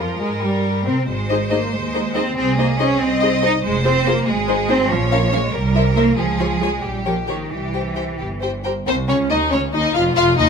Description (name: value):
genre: quick classical-period movement for string orchestra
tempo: 93 BPM (dotted quarters)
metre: 6/8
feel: rubato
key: Ab major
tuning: A4 = 438 Hz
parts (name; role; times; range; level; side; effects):
- rich chamber violin section; melody; 0.0-10.5 s; G4 to F5; -24 LUFS; left 2 dB; none
- rich chamber violin section; second line; 0.0-10.5 s; G3 to Ab5; -23 LUFS; left 3 dB; none
- dark chamber viola section; accompaniment; 0.0-10.5 s; F3 to C5; -25 LUFS; equal; none
- rich chamber double bass section; bass; 0.0-10.5 s; F1 to C3; -23 LUFS; right 2 dB; none
- rich studio cello section; bass; 0.0-10.5 s; C2 to Eb4; -22 LUFS; right 2 dB; none
room: moderate large studio reverb, RT60 1.3 s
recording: minimal, uncompressed stereo recording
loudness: -16 LUFS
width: side -6 dB against mid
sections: 0.0-8.9 A section; 8.9-10.5 B section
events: none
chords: 0.0 Abmaj13/F; 1.1 Ab; 2.4 Ab/C; 3.6 Fm; 4.3 Ab; 4.9 Bbm; 5.5 C7; 6.2 Db; 6.8 Gdim/Bb; 7.5 C; 8.9 Cm; 9.5 Db